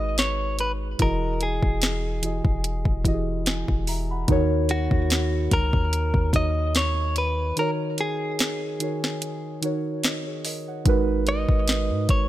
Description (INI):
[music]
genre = contemporary R&B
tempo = 73 BPM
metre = 4/4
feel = swing 54% on 16ths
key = Eb phrygian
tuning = A4 = 440 Hz
[part]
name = direct-recorded clean electric guitar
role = melody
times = 0.0-12.3 s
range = Gb4 to Eb5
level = -28 LUFS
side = equal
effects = none
[part]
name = muted felt-like synth keys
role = accompaniment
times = 0.0-12.3 s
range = Eb3 to B5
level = -28 LUFS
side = right 2 dB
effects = chorus
[part]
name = warm 808-style bass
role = bass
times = 0.0-12.3 s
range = E1 to Ab2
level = -26 LUFS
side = equal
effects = none
[part]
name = smooth R&B drum kit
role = drums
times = 0.2-12.3 s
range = hi-hat, kick drum, snare drum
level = -24 LUFS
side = equal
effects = none
[sound]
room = little or no reverb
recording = none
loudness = -22 LUFS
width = side -14 dB against mid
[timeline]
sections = 0.0-12.3 A section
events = break 7.6-10.9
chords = 0.0 Abm7; 1.0 Emaj7; 4.3 Ebm7; 10.9 Abm7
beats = 0.17 | 0.99 1.82 2.64 3.46 | 4.28 5.10 5.93 6.75 | 7.57 8.39 9.21 10.04 | 10.86 11.68